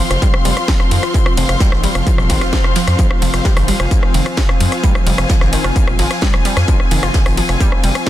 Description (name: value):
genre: driving peak-time techno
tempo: 130 BPM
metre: 4/4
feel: straight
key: F minor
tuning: A4 = 441 Hz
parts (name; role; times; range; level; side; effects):
- warbly dusty pluck; riff; 0.0-8.1 s; Eb3 to F4; -23 LUFS; right 1 dB; chorus, sidechain pumping, dub echo
- deep dark ambient pad; drone; 0.0-8.1 s; F3 to C4; -24 LUFS; equal; chorus, built-in reverb, sidechain pumping
- warm studio string section; texture; 0.0-8.1 s; F4 to C6; -22 LUFS; left 3 dB; sidechain pumping
- gritty driven synth bass; bass; 0.1-7.9 s; Eb1 to F2; -17 LUFS; equal; sidechain pumping
- techno drum kit; drums; 0.1-8.1 s; hi-hat, ride cymbal, rim click, snare drum; -21 LUFS; equal; sidechain pumping on hats, soft clipping on snare, sidechain pumping on cymbals
- electronic kick drum; drums; 0.2-8.1 s; none; -14 LUFS; equal; distortion
- jazz brush drum kit; drums; 0.2-8.1 s; hi-hat, snare drum; -30 LUFS; left 3 dB; high-pass filter on hats, soft clipping on snare, high-pass filter on snare, high-pass filter on room
room: little or no reverb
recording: dense, heavily limited modern master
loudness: -12 LUFS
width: side -13 dB against mid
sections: 0.0-8.1 A section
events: none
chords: 0.0 F5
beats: 0.22 0.68 | 1.14 1.60 2.07 2.53 | 2.99 3.45 3.91 4.37 | 4.84 5.30 5.76 6.22 | 6.68 7.14 7.61 8.07